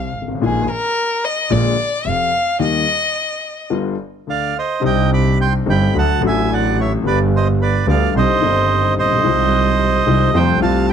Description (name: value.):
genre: tango.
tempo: 110 BPM.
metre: 4/4.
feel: rubato.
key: C harmonic minor from 4.8 s.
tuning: A4 = 440 Hz.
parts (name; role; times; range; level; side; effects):
warm violin; second line; 0.0-3.7 s; Ab4 to F5; -18 LUFS; left 2 dB; none.
dark concert grand piano; accompaniment; 0.0-10.9 s; F1 to G4; -19 LUFS; left 5 dB; none.
clear double bass; bass; 0.0-10.9 s; F1 to F2; -18 LUFS; right 3 dB; none.
bandoneon; melody; 4.3-10.9 s; B4 to D6; -18 LUFS; right 4 dB; none.
room: little or no reverb.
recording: close, detailed microphones.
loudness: -14 LUFS.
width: side -8 dB against mid.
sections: 0.0-4.8 A section; 4.8-10.9 B section.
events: violin solo 0.0-4.8; break 2.6-4.8.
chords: 0.4 Bb7sus4; 1.5 Bb7; 2.6 Eb; 3.7 G7; 4.8 Cmadd9; 5.9 D; 7.0 G; 8.1 Cmadd9; 9.2 Ab6/C; 10.3 Fadd9.